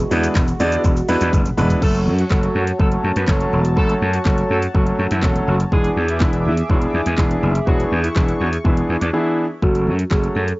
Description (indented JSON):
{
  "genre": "dance-pop",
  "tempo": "123 BPM",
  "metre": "4/4",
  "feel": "straight",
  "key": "F# minor",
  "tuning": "A4 = 440 Hz",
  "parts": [
    { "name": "marimba with soft mallets", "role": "melody", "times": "0.0-1.3, 9.6-10.6 s", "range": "F#4 to A4", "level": "-25 LUFS", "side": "right 1 dB", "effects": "cassette tape" },
    { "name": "chorused pulse-width pad", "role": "sustained chords", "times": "0.0-9.6 s", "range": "D3 to D6", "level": "-27 LUFS", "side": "equal", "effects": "sidechain pumping" },
    { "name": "gritty slap bass", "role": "bass", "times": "0.0-10.5 s", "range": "E1 to F#2", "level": "-19 LUFS", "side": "equal", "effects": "overdrive, sidechain pumping" },
    { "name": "warm concert grand piano", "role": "accompaniment", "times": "0.1-10.4 s", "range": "E3 to D5", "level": "-22 LUFS", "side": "equal", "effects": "sidechain pumping" },
    { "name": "deep house drum kit", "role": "drums", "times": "0.1-10.6 s", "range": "crash cymbal, handclaps, hi-hat, kick drum, shaker, snare drum, toms", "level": "-19 LUFS", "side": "equal", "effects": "none" },
    { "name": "tube shaker", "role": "percussion", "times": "0.2-1.8 s", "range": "none", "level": "-46 LUFS", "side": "left 6 dB", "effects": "none" },
    { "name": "clear horn section", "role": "melody", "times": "1.8-9.5 s", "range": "E3 to D5", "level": "-27 LUFS", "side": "equal", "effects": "sidechain pumping, cassette tape, analog delay" }
  ],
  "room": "little or no reverb",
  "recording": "home recording on cassette, nothing above 7.6 kHz",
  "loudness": "-15 LUFS",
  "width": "side -21 dB against mid",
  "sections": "0.0-1.8 A section; 1.8-9.6 B section",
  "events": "drum fill 1.3-1.8; silent gap 9.1-9.6",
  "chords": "0.0 E7; 1.8 F#m; 5.7 E7; 9.6 F#m"
}